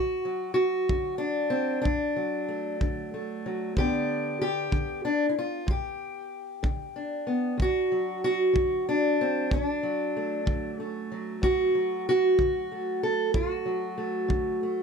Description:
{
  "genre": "acoustic country blues, solo or duo",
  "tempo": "63 BPM (dotted quarters)",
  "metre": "12/8",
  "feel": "straight",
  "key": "D major",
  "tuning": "A4 = 440 Hz",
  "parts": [
    { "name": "fingerpicked steel-string acoustic guitar", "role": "melody", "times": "0.0-14.8 s", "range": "D2 to A4", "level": "-26 LUFS", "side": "equal", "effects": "none" },
    { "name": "kick drum", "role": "drums", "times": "0.9-14.4 s", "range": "none", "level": "-28 LUFS", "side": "equal", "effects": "none" }
  ],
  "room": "light reverb",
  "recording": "none",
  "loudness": "-25 LUFS",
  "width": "side -6 dB against mid",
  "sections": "0.0-14.8 A section",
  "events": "none",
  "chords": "0.0 D; 3.8 G; 7.6 D"
}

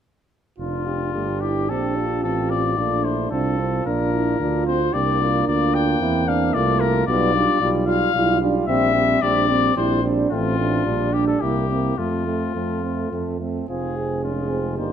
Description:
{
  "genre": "classical, brass quintet",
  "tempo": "110 BPM",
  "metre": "3/4",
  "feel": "rubato",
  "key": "F major",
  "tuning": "A4 = 441 Hz",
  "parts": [
    { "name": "clear trumpet", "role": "melody", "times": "0.6-14.9 s", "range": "F4 to G5", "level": "-24 LUFS", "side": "left 8 dB", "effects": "none" },
    { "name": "mellow flugelhorn", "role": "second line", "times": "0.6-14.9 s", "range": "C4 to Ab4", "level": "-27 LUFS", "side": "right 6 dB", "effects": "none" },
    { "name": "warm French horn", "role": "accompaniment", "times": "0.6-14.9 s", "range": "G3 to F4", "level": "-27 LUFS", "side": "left 4 dB", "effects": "none" },
    { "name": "mellow tuba", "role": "bass", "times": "0.6-14.9 s", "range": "F1 to F2", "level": "-24 LUFS", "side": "right 3 dB", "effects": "none" },
    { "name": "warm euphonium", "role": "accompaniment", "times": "1.1-14.9 s", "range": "F3 to F4", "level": "-25 LUFS", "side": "right 4 dB", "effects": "none" }
  ],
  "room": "moderate recital hall reverb, RT60 1.5 s",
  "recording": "none",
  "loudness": "-18 LUFS",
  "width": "side -8 dB against mid",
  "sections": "0.6-13.7 A section; 13.7-14.9 B section",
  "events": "none",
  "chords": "0.6 F; 2.2 F/A; 3.9 Bb; 5.5 Bb/D; 7.1 G7/B; 8.7 C7/Bb; 10.3 F/A; 10.9 Gm/Bb; 11.4 C7; 12.0 F; 13.7 Fm"
}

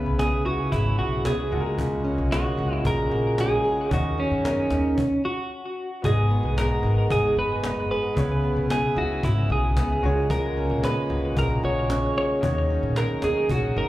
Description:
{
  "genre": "acoustic pop",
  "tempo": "113 BPM",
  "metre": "4/4",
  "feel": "straight",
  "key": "G# minor",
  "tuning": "A4 = 440 Hz",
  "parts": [
    { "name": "twelve-string electric guitar", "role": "melody", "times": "0.0-13.9 s", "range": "C#4 to C#5", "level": "-26 LUFS", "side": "right 1 dB", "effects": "slapback echo, ping-pong delay" },
    { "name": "bright upright piano", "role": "accompaniment", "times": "0.0-13.9 s", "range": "G#3 to D#5", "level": "-37 LUFS", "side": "left 4 dB", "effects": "slapback echo" },
    { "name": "fingerpicked plugged-in steel-string acoustic guitar", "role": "accompaniment", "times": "0.0-13.9 s", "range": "G#2 to A#4", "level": "-28 LUFS", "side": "right 1 dB", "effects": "none" },
    { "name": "pedal harmonium", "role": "sustained chords", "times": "0.0-13.9 s", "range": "A#2 to F#4", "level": "-33 LUFS", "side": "left 2 dB", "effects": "none" },
    { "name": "upright bass", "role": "bass", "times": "0.1-13.9 s", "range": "F#1 to A#2", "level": "-26 LUFS", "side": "equal", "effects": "none" },
    { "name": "cajon", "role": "drums", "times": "0.2-13.6 s", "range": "none", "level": "-29 LUFS", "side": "equal", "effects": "none" }
  ],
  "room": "studio reverb",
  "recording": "live gig heard through the venue's PA, club reverb",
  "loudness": "-21 LUFS",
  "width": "side -15 dB against mid",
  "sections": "0.0-6.0 A section; 6.0-13.9 A section",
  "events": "stop 5.0-6.0",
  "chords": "0.0 C#m7; 1.5 F#add9; 3.9 D#m7; 5.0 N.C.; 6.0 G#m7; 8.2 C#m7; 10.0 F#add9; 12.4 D#m7"
}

